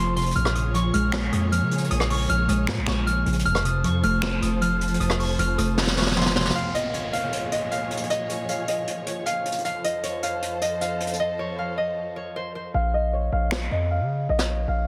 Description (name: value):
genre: hip hop, trap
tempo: 155 BPM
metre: 4/4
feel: half-time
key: Bb minor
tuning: A4 = 440 Hz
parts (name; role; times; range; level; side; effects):
- concert harp; melody; 0.0-14.9 s; C5 to F6; -29 LUFS; equal; low-pass filter, tape echo
- muted felt-like synth keys; accompaniment; 0.0-6.6 s; F2 to C4; -28 LUFS; equal; chorus
- warm studio string section; sustained chords; 0.0-12.7 s; F2 to Db5; -36 LUFS; equal; none
- hard-hitting 808-style bass; bass; 0.0-6.5, 12.7-14.9 s; F1 to Db3; -28 LUFS; equal; none
- vintage brush drum kit; drums; 0.2-14.5 s; finger snaps, hi-hat, rim click, snare drum; -30 LUFS; equal; soft clipping on snare
- downlifter; sound effects; 6.6-9.6 s; none; -38 LUFS; equal; none
room: studio reverb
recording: dense, heavily limited modern master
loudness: -24 LUFS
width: mono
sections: 0.0-6.5 A section; 6.5-12.7 B section; 12.7-14.9 C section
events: drum fill 5.8-6.5; hi-hats muted 12.7-14.9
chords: 0.4 Bbm7; 3.5 F; 6.5 Bbm7; 9.6 F; 12.7 Bbm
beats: | 0.36 0.74 1.13 1.52 | 1.91 2.29 2.68 3.07 | 3.45 3.84 4.23 4.62 | 5.00 5.39 5.78 6.16 | 6.55 6.94 7.32 7.71 | 8.10 8.49 8.87 9.26 | 9.65 10.03 10.42 10.81 | 11.20 11.58 11.97 12.36 | 12.74 13.13 13.52 13.90 | 14.29 14.68